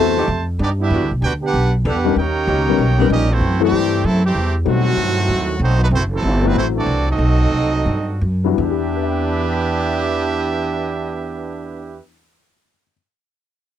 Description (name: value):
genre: jazz, big band swing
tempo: 163-192 BPM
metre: 4/4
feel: swing 63% on 8ths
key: E minor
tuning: A4 = 440 Hz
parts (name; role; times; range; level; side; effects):
- brilliant trumpet section; melody; 0.0-12.0 s; F#3 to A5; -22 LUFS; right 3 dB; none
- clear trombone section; second line; 0.0-12.0 s; A2 to G4; -23 LUFS; right 5 dB; none
- dark upright piano; accompaniment; 0.0-12.9 s; E2 to B6; -20 LUFS; left 16 dB; none
- upright bass; bass; 0.0-12.0 s; F#1 to B2; -19 LUFS; equal; none
- mellow saxophone section; sustained chords; 0.2-3.1 s; B2 to A#4; -23 LUFS; left 2 dB; none
room: light reverb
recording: dry, close 1970s-style studio recording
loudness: -15 LUFS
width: side -10 dB against mid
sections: 0.0-3.4 A section; 3.4-8.6 B section; 8.6-11.5 C section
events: slowing down 5.9-8.6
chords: 0.3 Fadd9; 0.9 Em9; 2.2 D#7b13; 3.4 F#m7b5; 4.7 B7b9b13; 5.9 F#m7b5; 7.2 B7b9b13; 8.6 Em7